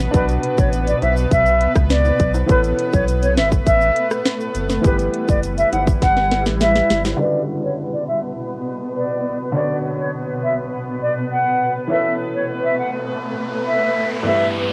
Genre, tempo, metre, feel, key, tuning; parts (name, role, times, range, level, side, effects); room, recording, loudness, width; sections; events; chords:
dancehall; 102 BPM; 4/4; straight; B minor; A4 = 445 Hz
clear grand piano; accompaniment; 0.0-14.7 s; G2 to D5; -29 LUFS; equal; low-pass filter, cassette tape, plate reverb
granular cloud pad; sustained chords; 0.0-14.7 s; B2 to B4; -27 LUFS; equal; built-in reverb, sidechain pumping, low-pass filter, cassette tape
sub bass with octave; bass; 0.0-7.1 s; F#1 to C#2; -23 LUFS; equal
bright reedy wooden flute; melody; 0.1-14.7 s; B4 to F#5; -22 LUFS; equal; low-pass filter, cassette tape, tape echo
island pop drum kit; drums; 0.1-7.2 s; hi-hat, kick drum, rim click, snare drum; -21 LUFS; equal; overdrive, cassette tape
tube shaker and timbales; percussion; 0.1-7.2 s; -35 LUFS; equal
riser; sound effects; 12.5-14.7 s; -32 LUFS; equal
light reverb; home recording on cassette; -19 LUFS; mono
0.0-7.2 A section; 7.2-14.7 B section
drum fill 6.0-7.2; filter sweep 7.2-14.7; riser 12.5-14.7
0.0 Bmadd9; 2.5 Aadd9; 4.8 Em; 7.2 Bmadd9; 11.9 Aadd9